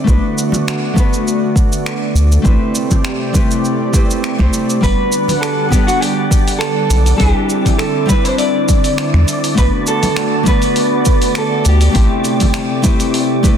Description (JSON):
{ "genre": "sunset chillout", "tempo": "101 BPM", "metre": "4/4", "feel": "swing 54% on 16ths", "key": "unclear", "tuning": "A4 = 439 Hz", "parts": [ { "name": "nylon-string guitar", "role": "accompaniment", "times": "0.0-13.6 s", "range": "G3 to F#5", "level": "-19 LUFS", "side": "moving between left 4 dB and right 4 dB", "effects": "auto-pan, low-pass filter, ping-pong delay" }, { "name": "lush unison pad", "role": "sustained chords", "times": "0.0-13.6 s", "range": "C3 to F#5", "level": "-20 LUFS", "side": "equal", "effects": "chorus" }, { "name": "round analog bass", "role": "bass", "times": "0.1-12.1 s", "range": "G1 to E2", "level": "-11 LUFS", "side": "equal", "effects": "none" }, { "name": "dusty soul sampler-style drum kit", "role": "drums", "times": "0.1-13.6 s", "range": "cabasa, finger snaps, hi-hat", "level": "-23 LUFS", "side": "right 1 dB", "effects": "soft clipping on snare" }, { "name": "electronic kick drum", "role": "drums", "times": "0.1-13.6 s", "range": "none", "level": "-14 LUFS", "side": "equal", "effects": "none" }, { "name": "congas", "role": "percussion", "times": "0.5-13.6 s", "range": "none", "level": "-23 LUFS", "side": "left 2 dB", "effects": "none" }, { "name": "electric guitar at the edge of break-up", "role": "melody", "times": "4.8-13.6 s", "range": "F#4 to D5", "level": "-18 LUFS", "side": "right 1 dB", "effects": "ping-pong delay" }, { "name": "wind-like tuned noise texture", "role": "texture", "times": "5.3-13.6 s", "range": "D5 to D6", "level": "-27 LUFS", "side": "equal", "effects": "built-in reverb" } ], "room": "light reverb", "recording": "dense, heavily limited modern master", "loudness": "-12 LUFS", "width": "side -8 dB against mid", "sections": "0.0-13.6 A section", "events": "none", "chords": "0.1 Bm7; 2.5 Am9; 4.8 Gmaj7; 7.2 Cmaj9; 9.6 Bm7; 12.0 Am9", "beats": "| 0.07 0.67 1.26 1.86 | 2.45 3.04 3.64 4.23 | 4.83 5.42 6.02 6.61 | 7.20 7.80 8.39 8.99 | 9.58 10.17 10.77 11.36 | 11.96 12.55 13.14" }